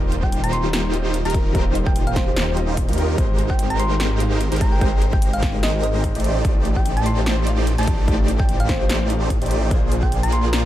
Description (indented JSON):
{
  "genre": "future bass",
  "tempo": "147 BPM",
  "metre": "4/4",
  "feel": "swing 55% on 16ths, half-time",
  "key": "Eb major",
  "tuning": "A4 = 442 Hz",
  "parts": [
    { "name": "clear concert grand piano", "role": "accompaniment", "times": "0.0-10.7 s", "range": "G3 to F5", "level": "-30 LUFS", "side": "left 4 dB", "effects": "sidechain pumping" },
    { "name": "supersaw chords", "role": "riff", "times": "0.0-10.7 s", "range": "Eb3 to D5", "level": "-25 LUFS", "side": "right 1 dB", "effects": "phaser, cassette tape, sidechain pumping" },
    { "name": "wide detuned saw bass", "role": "bass", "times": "0.0-10.7 s", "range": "Eb1 to Eb2", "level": "-22 LUFS", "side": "equal", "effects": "chorus, tube saturation, sidechain pumping" },
    { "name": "big-room dance drum kit", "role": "drums", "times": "0.1-10.6 s", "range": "hi-hat, snare drum", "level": "-28 LUFS", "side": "equal", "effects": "small room reverb" },
    { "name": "thumb-piano-like synth pluck", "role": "melody", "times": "0.2-10.4 s", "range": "C5 to C6", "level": "-28 LUFS", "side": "equal", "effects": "chorus, sidechain pumping, ping-pong delay" },
    { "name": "electronic kick drum", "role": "drums", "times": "0.2-10.1 s", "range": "none", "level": "-20 LUFS", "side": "equal", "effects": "small room reverb" }
  ],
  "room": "little or no reverb",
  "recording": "dark, warm production",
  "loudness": "-17 LUFS",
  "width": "side -13 dB against mid",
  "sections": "0.0-10.7 A section",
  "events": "none",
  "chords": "0.0 Eb69; 3.2 Abmaj7; 6.2 F13/A; 9.7 Bb9"
}